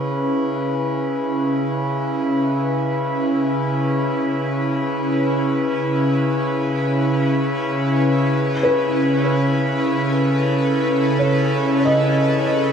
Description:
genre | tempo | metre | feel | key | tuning
ambient | free time | none | none | C# minor | A4 = 437 Hz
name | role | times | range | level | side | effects
airy breathy pad | sustained chords | 0.0-12.7 s | C#3 to B4 | -19 LUFS | right 1 dB | chorus
hand-pumped harmonium | drone | 0.0-12.7 s | C#3 | -27 LUFS | left 1 dB | none
glass harmonica | texture | 0.0-12.7 s | B4 to B5 | -27 LUFS | left 3 dB | none
felt-muted upright piano | arpeggios | 8.6-12.7 s | B4 to D#5 | -23 LUFS | left 1 dB | tape echo
room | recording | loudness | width
wet cathedral reverb, RT60 6.7 s | none | -17 LUFS | side -7 dB against mid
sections
0.0-12.7 A section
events
none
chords
0.0 C#m7; 8.3 Aadd9/C#

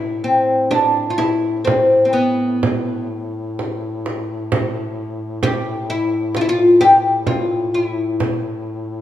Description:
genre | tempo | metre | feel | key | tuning
caucasian folk, Caucasian lament | 65 BPM | 3/4 | rubato | A minor | A4 = 441 Hz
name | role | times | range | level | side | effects
oud | melody | 0.0-8.6 s | B3 to G4 | -15 LUFS | left 1 dB | none
mellow duduk | drone | 0.0-9.0 s | A2 | -26 LUFS | left 2 dB | none
frame drum | percussion | 0.7-8.4 s | none | -23 LUFS | right 3 dB | none
room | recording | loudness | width
light reverb | none | -15 LUFS | side -12 dB against mid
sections
0.0-9.0 A section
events
none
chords
none

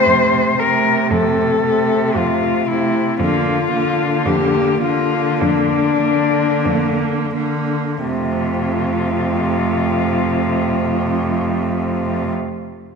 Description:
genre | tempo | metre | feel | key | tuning
classical, lyrical piece for cello ensemble | 41-58 BPM | 4/4 | rubato | F major | A4 = 440 Hz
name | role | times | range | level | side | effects
dark cello | melody | 0.0-12.3 s | D4 to C5 | -18 LUFS | left 5 dB | none
rich cello | second line | 0.0-12.3 s | A3 to Bb3 | -22 LUFS | right 8 dB | none
rich cello | accompaniment | 0.0-12.3 s | C3 to D3 | -21 LUFS | left 2 dB | none
clear cello | bass | 0.1-12.3 s | F2 | -24 LUFS | right 2 dB | none
room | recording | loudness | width
moderate concert hall reverb, RT60 1.9 s | minimal, uncompressed stereo recording | -15 LUFS | side -5 dB against mid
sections
0.0-8.1 A section; 8.1-13.0 B section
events
slowing down 0.0-8.1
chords
0.0 F; 3.2 Bb/F; 8.1 F

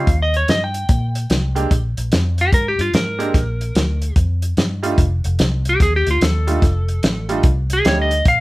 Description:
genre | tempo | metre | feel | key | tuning
electric blues shuffle | 147 BPM | 4/4 | swing 64% on 8ths | unclear | A4 = 440 Hz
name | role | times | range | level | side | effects
clean lap steel guitar | melody | 0.0-8.4 s | F4 to G5 | -20 LUFS | equal | none
bright upright piano | accompaniment | 0.0-8.1 s | G3 to G4 | -22 LUFS | right 3 dB | none
vintage muted fingered electric bass | bass | 0.1-8.4 s | F1 to Bb2 | -19 LUFS | equal | none
warm soul drum kit | drums | 0.1-8.4 s | hi-hat, kick drum, snare drum | -17 LUFS | equal | none
room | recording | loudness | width
moderate studio reverb, RT60 0.5 s | band playing live in one room | -15 LUFS | side -20 dB against mid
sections
0.0-8.4 A section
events
electric slide guitar solo 0.0-8.4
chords
0.0 Eb6; 1.7 Bb13; 5.0 F13

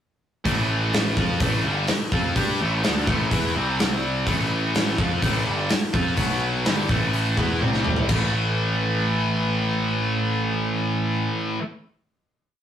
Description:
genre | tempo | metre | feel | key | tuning
hard rock | 125 BPM | 4/4 | straight | A minor | A4 = 439 Hz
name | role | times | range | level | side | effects
fuzz picked electric bass | bass | 0.4-11.3 s | G1 to G2 | -26 LUFS | equal | overdrive
tight distorted guitar | riff | 0.5-11.6 s | G2 to G4 | -24 LUFS | equal | distortion
gated 80s drum kit | drums | 0.5-8.2 s | crash cymbal, hi-hat, kick drum, snare drum, toms | -24 LUFS | equal | none
room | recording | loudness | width
moderate studio reverb, RT60 0.5 s | rough rehearsal-room recording, warm saturation | -20 LUFS | side -9 dB against mid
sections
0.5-8.1 riff; 8.1-12.0 final chord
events
drum fill 7.6-8.1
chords
0.5 Am; 3.6 C5; 4.3 Am; 6.2 B5; 6.7 A5; 7.6 C5; 8.1 A5

